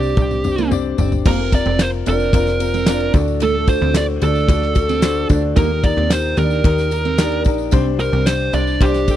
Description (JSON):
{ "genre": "piano-driven pop", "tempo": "111 BPM", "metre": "4/4", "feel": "straight", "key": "unclear", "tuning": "A4 = 440 Hz", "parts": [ { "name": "fuzz lead guitar", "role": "melody", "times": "0.0-9.2 s", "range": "G4 to D5", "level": "-21 LUFS", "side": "right 3 dB", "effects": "distortion" }, { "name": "dark upright piano", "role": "accompaniment", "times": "0.0-9.2 s", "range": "G2 to D5", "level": "-22 LUFS", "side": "left 10 dB", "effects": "none" }, { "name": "picked steel-string acoustic guitar", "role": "riff", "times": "0.0-8.9 s", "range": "A3 to Eb4", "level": "-24 LUFS", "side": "right 11 dB", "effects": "none" }, { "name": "plucky analog bass", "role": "bass", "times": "0.0-9.2 s", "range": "F1 to Eb2", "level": "-20 LUFS", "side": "equal", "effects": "none" }, { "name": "tambourine", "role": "percussion", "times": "0.0-9.2 s", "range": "none", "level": "-38 LUFS", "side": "left 19 dB", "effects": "none" }, { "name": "damped 70s drum kit", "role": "drums", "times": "0.2-9.2 s", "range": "crash cymbal, handclaps, kick drum, ride cymbal, snare drum, toms", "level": "-17 LUFS", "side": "equal", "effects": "none" } ], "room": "little or no reverb", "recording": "dry, close 1970s-style studio recording", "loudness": "-14 LUFS", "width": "side -12 dB against mid", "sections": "0.0-1.3 A section; 1.3-9.2 B section", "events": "drum fill 0.0-1.3", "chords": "0.0 Csus2; 1.3 Fsus4; 3.1 D; 5.6 Eb; 7.7 Csus2", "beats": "0.17 0.71 | 1.25 1.79 2.33 2.87 | 3.41 3.95 4.49 5.03 | 5.57 6.11 6.65 7.19 | 7.73 8.27 8.80" }